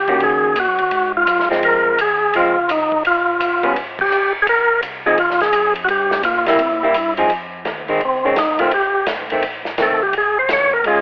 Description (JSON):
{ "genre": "soul jazz organ trio", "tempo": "169 BPM", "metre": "4/4", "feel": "swing 64% on 8ths", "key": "F minor", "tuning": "A4 = 441 Hz", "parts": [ { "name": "percussive tonewheel organ", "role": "melody", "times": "0.0-11.0 s", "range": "C4 to Db5", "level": "-15 LUFS", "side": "equal", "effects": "slow rotary speaker, cassette tape" }, { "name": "mellow tonewheel organ", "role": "bass", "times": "0.0-11.0 s", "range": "F1 to C3", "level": "-39 LUFS", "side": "equal", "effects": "overdrive, chorus vibrato, slow rotary speaker, tube saturation" }, { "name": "vintage hollow-body jazz guitar", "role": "accompaniment", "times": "0.1-11.0 s", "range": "Eb3 to Ab4", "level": "-18 LUFS", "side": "equal", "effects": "cassette tape" }, { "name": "swinging big-band drum kit", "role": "drums", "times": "0.1-11.0 s", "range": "crash cymbal, hi-hat, kick drum, ride cymbal, snare drum", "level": "-24 LUFS", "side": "equal", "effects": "cassette tape" } ], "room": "light reverb, small room ambience", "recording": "home recording on cassette, telephone sound", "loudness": "-14 LUFS", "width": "side -28 dB against mid", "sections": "0.0-7.3 A section; 7.3-11.0 B section", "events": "band accent 3.9; tonewheel organ solo 7.3-11.0", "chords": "0.2 Ebm7; 0.9 Ab7; 1.6 Dbmaj7; 3.0 Bbm7; 3.8 Gbm; 4.5 Ab6; 5.9 Gm6; 6.6 C7; 7.3 Fm7; 8.7 F7; 10.1 Bbm7", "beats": "| 0.21 0.56 0.92 1.27 | 1.63 1.98 2.34 2.69 | 3.05 3.40 3.76 4.11 | 4.47 4.82 5.18 5.53 | 5.89 6.24 6.60 6.95 | 7.30 7.66 8.02 8.37 | 8.72 9.08 9.44 9.79 | 10.14 10.50 10.85" }